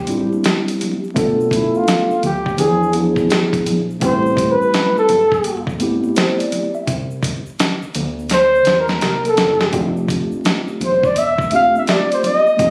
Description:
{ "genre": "hip hop, jazz-hop", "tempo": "84 BPM", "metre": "4/4", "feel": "swing 65% on 16ths", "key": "unclear", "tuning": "A4 = 440 Hz", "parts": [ { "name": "breathy flugelhorn", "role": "melody", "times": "0.0-12.7 s", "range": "E4 to F5", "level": "-18 LUFS", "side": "equal", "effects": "slapback echo" }, { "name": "deep dub fingered electric bass", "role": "bass", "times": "0.0-12.7 s", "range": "E1 to E2", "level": "-27 LUFS", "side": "equal", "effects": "none" }, { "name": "mellow tine electric piano", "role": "accompaniment", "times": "0.1-12.7 s", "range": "F3 to E5", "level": "-21 LUFS", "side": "equal", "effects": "none" }, { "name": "dusty soul sampler-style drum kit", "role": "drums", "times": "0.1-12.7 s", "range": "hi-hat, kick drum, snare drum", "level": "-22 LUFS", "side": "equal", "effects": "none" }, { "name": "egg shaker and congas", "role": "percussion", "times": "0.1-12.7 s", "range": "none", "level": "-31 LUFS", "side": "equal", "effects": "none" } ], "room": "light reverb", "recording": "recorded on a phone in the room, studio reverb, vinyl crackle, compression", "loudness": "-17 LUFS", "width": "mono", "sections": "0.0-12.7 A section", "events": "flugelhorn solo 0.0-12.7; drum fill 8.3-9.7", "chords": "0.0 C; 1.2 Bm7b5; 2.6 E7b9; 4.0 Am9; 6.9 Cadd9; 9.7 F69" }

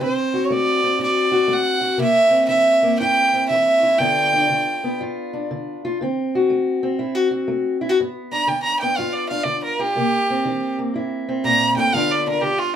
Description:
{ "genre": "acoustic country blues, solo or duo", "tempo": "121 BPM", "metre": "4/4", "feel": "swing 67% on 8ths", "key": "unclear", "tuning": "A4 = 442 Hz", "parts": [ { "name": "clear fiddle", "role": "melody", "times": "0.0-5.0, 8.3-12.8 s", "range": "F4 to Bb5", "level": "-18 LUFS", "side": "right 2 dB", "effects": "none" }, { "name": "fingerpicked steel-string acoustic guitar", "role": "accompaniment", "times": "0.0-12.8 s", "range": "G2 to F#4", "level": "-21 LUFS", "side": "left 2 dB", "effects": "none" } ], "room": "moderate studio reverb, RT60 0.6 s", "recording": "band playing live in one room", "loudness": "-17 LUFS", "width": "side -9 dB against mid", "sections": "0.0-8.0 A section; 8.0-12.8 B section", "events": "fiddle solo 8.0-12.8", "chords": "0.0 D7; 2.0 C7; 4.0 G7; 6.0 D7; 8.0 G7; 10.0 C7; 11.9 G7" }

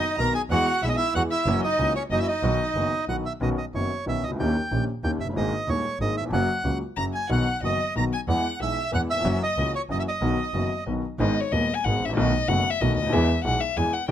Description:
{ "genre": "tango", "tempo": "186 BPM", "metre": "3/4", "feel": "rubato", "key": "B major", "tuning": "A4 = 441 Hz", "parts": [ { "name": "bandoneon", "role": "melody", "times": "0.0-10.8 s", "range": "C#4 to A#5", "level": "-27 LUFS", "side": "right 4 dB", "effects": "none" }, { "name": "warm violin", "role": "second line", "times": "0.0-3.0, 7.0-14.1 s", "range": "C#5 to A#5", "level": "-28 LUFS", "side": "left 5 dB", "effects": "none" }, { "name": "warm upright piano", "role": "accompaniment", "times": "0.2-14.1 s", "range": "D#1 to G#4", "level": "-27 LUFS", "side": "left 2 dB", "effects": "none" }, { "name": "clear double bass", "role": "bass", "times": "0.2-14.1 s", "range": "F#1 to E2", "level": "-28 LUFS", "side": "right 2 dB", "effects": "none" } ], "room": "little or no reverb", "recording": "close, detailed microphones", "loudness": "-22 LUFS", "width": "side -10 dB against mid", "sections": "0.0-3.4 A section; 3.4-11.2 A section; 11.2-14.1 B section", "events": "violin solo 11.2-14.1", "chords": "0.0 B; 0.5 E; 1.5 F#7; 2.4 B; 3.4 Badd9; 4.4 D#7; 5.4 G#sus2; 6.3 F#; 7.3 B; 8.3 E; 9.2 F#7; 10.2 B; 11.2 G#m; 12.2 B7; 13.1 E" }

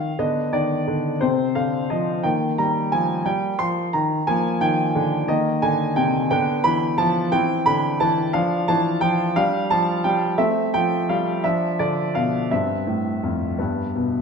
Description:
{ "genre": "classical-period piano sonatina", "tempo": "58 BPM (dotted quarters)", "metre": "6/8", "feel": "straight", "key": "C major from 6.3 s", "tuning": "A4 = 439 Hz", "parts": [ { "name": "clear concert grand piano", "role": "solo", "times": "0.0-14.2 s", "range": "F2 to C6", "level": "-19 LUFS", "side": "equal", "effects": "none" } ], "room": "wet recital hall reverb, RT60 1.4 s", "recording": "none", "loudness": "-19 LUFS", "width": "side -5 dB against mid", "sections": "0.0-14.2 A section", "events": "none", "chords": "0.2 Bm/D; 1.2 Cmadd11; 2.2 Eb; 4.3 Bb; 5.3 Eb5; 6.3 Dm69; 7.3 C; 8.3 Dm; 9.4 G5; 10.4 Am; 11.4 Dm; 12.5 C/G; 13.6 G" }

